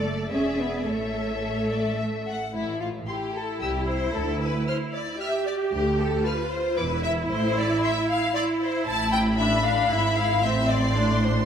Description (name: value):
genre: quick classical-period movement for string orchestra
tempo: 114 BPM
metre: 3/4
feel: rubato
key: A minor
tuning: A4 = 440 Hz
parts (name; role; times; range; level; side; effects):
- rich symphonic violin section; melody; 0.0-11.5 s; D5 to F6; -32 LUFS; left 4 dB; none
- rich symphonic violin section; second line; 0.0-11.5 s; E4 to A5; -27 LUFS; left 3 dB; none
- bright symphonic viola section; accompaniment; 0.0-11.5 s; C4 to A4; -28 LUFS; right 2 dB; none
- clear symphonic double bass section; bass; 0.0-11.5 s; E1 to D2; -30 LUFS; right 2 dB; none
- warm symphonic cello section; bass; 0.0-11.5 s; C2 to C#4; -29 LUFS; right 1 dB; none
room: moderate scoring stage reverb, RT60 1.5 s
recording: none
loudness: -22 LUFS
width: side -8 dB against mid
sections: 0.0-2.5 A section; 2.5-11.5 B section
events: none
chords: 0.3 E7; 0.9 A; 2.5 A5; 3.6 C; 4.2 Dm; 6.8 E5; 7.3 Am; 8.9 G13/A (rootless); 9.9 E/G#; 10.4 Am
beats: 0.34 | 0.89 1.45 2.00 | 2.55 3.08 3.62 | 4.15 4.68 5.20 | 5.73 6.26 6.78 | 7.30 7.83 8.35 | 8.87 9.39 9.91 | 10.44 10.96